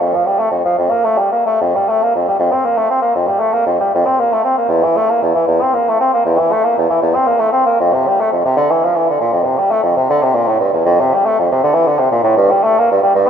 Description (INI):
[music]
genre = classical, baroque-style fantasia for unaccompanied bassoon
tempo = 78 BPM (dotted quarters)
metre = 12/8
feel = rubato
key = F major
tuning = A4 = 441 Hz
[part]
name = warm bassoon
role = solo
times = 0.0-13.3 s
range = E2 to C4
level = -12 LUFS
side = equal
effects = none
[sound]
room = wet church reverb, RT60 3.6 s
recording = minimal, uncompressed stereo recording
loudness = -12 LUFS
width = side -7 dB against mid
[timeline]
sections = 0.0-13.3 A section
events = none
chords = none